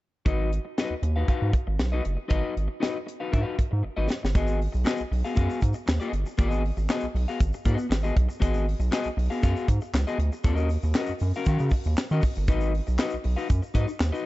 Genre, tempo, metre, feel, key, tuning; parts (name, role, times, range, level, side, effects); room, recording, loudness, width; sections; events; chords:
funk; 118 BPM; 4/4; straight; G# dorian; A4 = 440 Hz
electric guitar at the edge of break-up; accompaniment; 0.3-14.3 s; B3 to E#5; -30 LUFS; left 3 dB
round analog bass; bass; 0.3-14.1 s; F#1 to D#3; -25 LUFS; equal
tight funk drum kit; drums; 0.3-14.1 s; handclaps, hi-hat, kick drum, snare drum; -26 LUFS; equal
tube shaker; percussion; 4.4-14.3 s; -53 LUFS; left 2 dB
studio reverb; dark, warm production, nothing above 7.9 kHz; -23 LUFS; side -18 dB against mid
0.3-4.4 A section; 4.4-14.3 B section
drum fill 3.8-4.4
0.3 G#m7; 10.4 D#m7; 12.5 G#m7